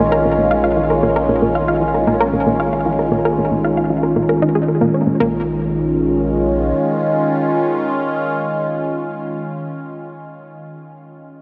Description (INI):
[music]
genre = ambient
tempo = 115 BPM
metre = 4/4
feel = straight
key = Bb minor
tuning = A4 = 440 Hz
[part]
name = sweeping resonant pad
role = sustained chords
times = 0.0-9.9 s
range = Eb3 to F4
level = -19 LUFS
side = equal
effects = chorus, phaser
[part]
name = analog pluck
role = riff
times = 0.0-5.4 s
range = Bb3 to F5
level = -22 LUFS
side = equal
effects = chorus, analog delay
[part]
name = warm sub bass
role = bass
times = 0.0-6.7 s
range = Bb1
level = -32 LUFS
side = equal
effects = none
[sound]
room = wet huge ambient reverb, RT60 8.1 s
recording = none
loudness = -17 LUFS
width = mono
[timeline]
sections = 0.0-5.2 A section; 5.2-9.4 B section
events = fade-out on sub bass 0.0-5.2; filter sweep on synth arpeggio sound 0.0-5.2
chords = 0.0 Bbm7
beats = 0.51 | 1.03 1.55 2.08 2.60 | 3.12 3.64 4.16 4.68 | 5.21 5.73 6.25 6.77 | 7.29 7.82 8.34 8.86